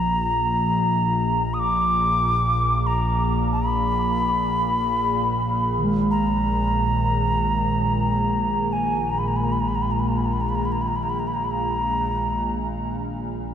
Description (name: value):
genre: world meditative, free-time meditation music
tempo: free time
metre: none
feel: none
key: unclear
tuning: A4 = 440 Hz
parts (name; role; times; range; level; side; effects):
- alto ocarina; melody; 0.0-12.5 s; Ab5 to Eb6; -23 LUFS; equal; tape echo
- evolving wavetable pad; drone; 0.0-13.5 s; Bb1 to Bb2; -24 LUFS; equal; chorus, built-in reverb
- bronze singing bowl; texture; 0.0-13.5 s; Eb3 to Ab3; -28 LUFS; right 1 dB; none
room: wet huge ambient reverb, RT60 6.3 s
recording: dark, warm production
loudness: -20 LUFS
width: side -9 dB against mid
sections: 0.0-13.5 A section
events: none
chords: none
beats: free time